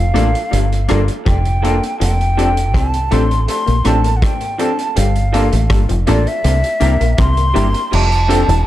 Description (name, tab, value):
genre	lovers rock reggae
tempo	81 BPM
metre	4/4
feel	straight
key	F major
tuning	A4 = 439 Hz
part	breathy jazz flute	melody	0.0-8.7 s	D5 to C6	-20 LUFS	right 1 dB	tape echo
part	electric guitar through a small old amp	riff	0.0-8.6 s	E3 to C4	-26 LUFS	left 6 dB	tape echo
part	deep dub fingered electric bass	bass	0.0-8.6 s	E1 to C2	-15 LUFS	equal	none
part	clear grand piano	accompaniment	0.1-8.4 s	Bb3 to A4	-22 LUFS	left 5 dB	tape echo
part	electric guitar through a small old amp	stabs	0.1-8.4 s	F3 to Bb4	-24 LUFS	right 4 dB	spring reverb, tape echo
part	vintage drum kit	drums	0.2-8.7 s	crash cymbal, hi-hat, kick drum, rim click	-21 LUFS	equal	none
room	studio ambience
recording	dark, warm production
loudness	-12 LUFS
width	side -14 dB against mid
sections	0.0-7.9 A section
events	none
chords	0.0 Gm9; 2.0 F6; 5.0 Gm9; 6.4 C7; 7.9 F6